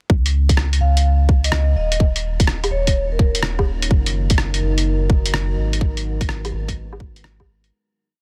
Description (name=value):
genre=future garage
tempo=126 BPM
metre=4/4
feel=swing 67% on 16ths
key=unclear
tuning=A4 = 440 Hz
part: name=warm sub bass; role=bass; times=0.1-7.7 s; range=Eb1 to Db2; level=-22 LUFS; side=equal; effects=sidechain pumping
part: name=electronic kick drum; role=drums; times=0.1-7.5 s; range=none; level=-19 LUFS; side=equal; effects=none
part: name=lo-fi sampler-style drum kit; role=drums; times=0.3-7.7 s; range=hi-hat, rim click, woodblock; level=-26 LUFS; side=equal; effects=none
part: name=vibraphone with medium mallets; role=melody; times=0.8-3.3 s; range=Bb4 to F5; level=-29 LUFS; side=equal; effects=tape echo
part: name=deep dark ambient pad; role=sustained chords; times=3.1-7.7 s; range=Ab3 to Gb5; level=-32 LUFS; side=equal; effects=chorus, built-in reverb, vintage 12-bit sampler grit, sidechain pumping
room=digital ambience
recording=dense, heavily limited modern master, vinyl crackle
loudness=-18 LUFS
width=mono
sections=0.1-7.7 groove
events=fade-out 5.2-7.7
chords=0.1 Dbsus2; 2.0 Ebm7; 3.9 Gb6; 5.8 Abm7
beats=| 0.10 0.57 1.05 1.53 | 2.00 2.48 2.96 3.43 | 3.91 4.38 4.86 5.34 | 5.81 6.29 6.76 7.24